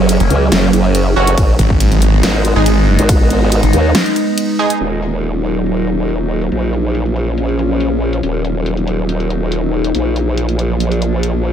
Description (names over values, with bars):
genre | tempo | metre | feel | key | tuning
heavy wobble dubstep | 140 BPM | 4/4 | half-time | Eb minor | A4 = 440 Hz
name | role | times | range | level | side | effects
evolving wavetable pad | sustained chords | 0.0-11.5 s | F3 to Eb4 | -18 LUFS | right 1 dB | chorus, built-in reverb, phaser, sidechain pumping
formant-sweep wobble bass | bass | 0.0-11.5 s | Eb1 to Eb2 | -15 LUFS | equal | chorus, overdrive
dubstep drum kit | drums | 0.1-11.3 s | crash cymbal, hi-hat, ride cymbal, snare drum | -20 LUFS | equal | low-pass filter on hats, low-pass filter on snare, low-pass filter on cymbals, low-pass filter on room
snarling distorted saw bass | bass | 0.2-3.7 s | Gb1 to Ab1 | -12 LUFS | equal | overdrive
orchestra-hit-like synth stab | stabs | 1.2-4.7 s | Gb3 to Ab4 | -18 LUFS | right 4 dB | built-in reverb, ping-pong delay
electronic kick drum | drums | 1.4-3.2 s | none | -13 LUFS | equal | none
room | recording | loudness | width
light reverb | none | -12 LUFS | side -9 dB against mid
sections
0.0-4.8 A section; 4.8-11.5 B section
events
drop 0.0-4.8; break 3.9-4.8; filter sweep on drum 4.8-11.5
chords
0.0 Gb; 1.4 Abm; 4.8 Ebm; 6.5 Bbm; 8.2 Ebm; 9.9 Bb